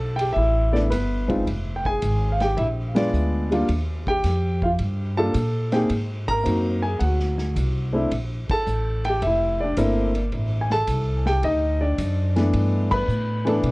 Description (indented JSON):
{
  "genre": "jazz piano trio",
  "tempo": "108 BPM",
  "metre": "4/4",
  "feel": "swing 69% on 8ths",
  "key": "unclear",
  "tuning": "A4 = 440 Hz",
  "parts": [
    { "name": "warm grand piano", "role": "melody", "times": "0.0-13.7 s", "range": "E3 to B5", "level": "-23 LUFS", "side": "equal", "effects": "tape echo" },
    { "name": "upright bass", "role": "bass", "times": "0.0-13.7 s", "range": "F1 to B2", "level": "-23 LUFS", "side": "equal", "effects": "none" },
    { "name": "vintage drum kit", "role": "drums", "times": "0.2-13.7 s", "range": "crash cymbal, hi-hat, kick drum, ride cymbal, snare drum", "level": "-33 LUFS", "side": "equal", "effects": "none" }
  ],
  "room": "light reverb",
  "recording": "worn, warbling old tape, cassette tape, warbly pitch drift",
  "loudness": "-20 LUFS",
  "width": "side -22 dB against mid",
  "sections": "0.0-13.7 A section",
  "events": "band accent 2.9, 8.4, 12.8",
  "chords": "0.0 G69; 1.5 Fmadd9; 2.6 Bb7b9; 3.7 Ebadd9; 5.9 Ab9; 8.1 Bbmaj7#11; 10.3 Am7; 11.4 D; 12.5 G69"
}